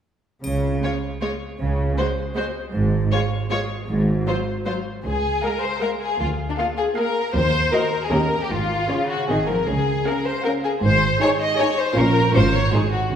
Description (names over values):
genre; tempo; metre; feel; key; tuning
cinematic, playful, whimsical film cue; 156 BPM; 3/4; straight; Db major; A4 = 440 Hz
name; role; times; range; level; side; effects
clear studio double bass section; bass; 0.4-13.2 s; Ab1 to Eb2; -25 LUFS; right 1 dB; none
rich studio cello section; bass; 0.4-13.2 s; Db2 to F3; -25 LUFS; right 2 dB; none
triangle; percussion; 0.4-1.2 s; none; -43 LUFS; equal; none
rich studio violin section; melody; 0.8-13.0 s; C5 to Db6; -30 LUFS; left 2 dB; none
rich studio violin section; second line; 0.8-13.2 s; D4 to Eb5; -22 LUFS; left 2 dB; none
rich studio viola section; accompaniment; 0.8-13.0 s; Gb3 to Ab4; -28 LUFS; right 1 dB; none
room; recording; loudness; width
wet scoring stage reverb, RT60 1.7 s; heard from further back in the room; -19 LUFS; side -8 dB against mid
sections
0.4-5.1 A section; 5.1-13.2 B section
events
none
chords
0.4 Db5; 2.7 N.C.; 5.1 Db; 6.2 Bb7/D; 7.4 Ebm; 8.1 Eb7; 8.5 Db/Ab; 9.3 Ab; 9.7 Db; 10.8 Ab; 12.0 Bbm; 12.3 Db/Ab; 12.7 Ab7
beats
| 0.45 0.83 1.22 | 1.60 1.98 2.37 | 2.74 3.12 3.50 | 3.89 4.27 4.66 | 5.05 5.44 5.82 | 6.21 6.59 6.97 | 7.35 7.73 8.12 | 8.51 8.90 9.29 | 9.68 10.07 10.45 | 10.83 11.21 11.59 | 11.97 12.35 12.73 | 13.12